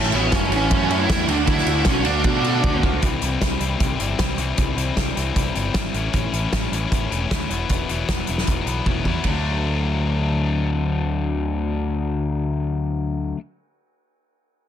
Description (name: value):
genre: indie rock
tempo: 154 BPM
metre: 4/4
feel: straight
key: D major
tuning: A4 = 440 Hz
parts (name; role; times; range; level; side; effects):
- bluesy overdriven lead guitar; melody; 0.0-2.8 s; A3 to E4; -24 LUFS; right 1 dB; distortion, slapback echo
- analog string pad; sustained chords; 0.0-3.0 s; F#4 to A5; -31 LUFS; right 3 dB; ensemble chorus
- cranked stack guitar; riff; 0.0-13.4 s; A2 to F#4; -25 LUFS; left 6 dB; overdrive
- raw garage guitar; riff; 0.0-3.0 s; A2 to F#4; -25 LUFS; right 7 dB; overdrive, lush chorus, slapback echo
- growling picked electric bass; bass; 0.0-13.3 s; E1 to B2; -24 LUFS; right 1 dB; overdrive
- loose indie drum kit; drums; 0.0-9.3 s; hi-hat, kick drum, ride cymbal, snare drum, toms; -23 LUFS; equal; none
room: little or no reverb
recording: dense, heavily limited modern master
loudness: -19 LUFS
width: side -10 dB against mid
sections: 0.0-3.0 A section; 3.0-9.3 B section; 9.3-12.4 C section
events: drum fill 2.6-3.0, 8.9-9.3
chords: 0.0 A6; 1.3 Dadd9; 3.0 C; 5.9 A; 7.5 Esus2; 9.3 D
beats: 0.33 0.71 1.10 | 1.48 1.87 2.26 2.64 | 3.03 3.42 3.81 4.19 | 4.58 4.97 5.36 5.75 | 6.13 6.52 6.91 7.30 | 7.69 8.08 8.47 8.86 | 9.25 9.64 10.03 10.42 | 10.81 11.20 11.60 11.98